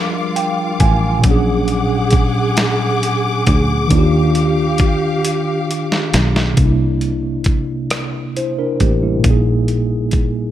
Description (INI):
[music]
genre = slow six-eight R&B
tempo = 45 BPM (dotted quarters)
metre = 6/8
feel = straight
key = unclear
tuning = A4 = 440 Hz
[part]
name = mellow tine electric piano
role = accompaniment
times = 0.0-10.5 s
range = Bb2 to Ab5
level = -17 LUFS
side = right 1 dB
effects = medium stereo tremolo
[part]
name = dark studio string section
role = sustained chords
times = 0.0-6.6 s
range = F4 to D6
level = -21 LUFS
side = left 1 dB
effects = none
[part]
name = fingered electric bass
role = bass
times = 0.0-10.5 s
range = A1 to F2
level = -19 LUFS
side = equal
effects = none
[part]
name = dusty soul sampler-style drum kit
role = drums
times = 0.4-10.3 s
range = hi-hat, kick drum, rim click, snare drum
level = -17 LUFS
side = equal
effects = none
[sound]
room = light reverb, digital ambience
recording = none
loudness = -13 LUFS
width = side -12 dB against mid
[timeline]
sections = 0.0-6.6 A section; 6.6-10.5 B section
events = tine electric piano fill 0.0-1.2; drum fill 5.2-6.6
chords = 0.0 Fm69; 1.2 Bb7alt; 3.9 Ebmaj9; 6.6 C9; 9.2 Bb7sus4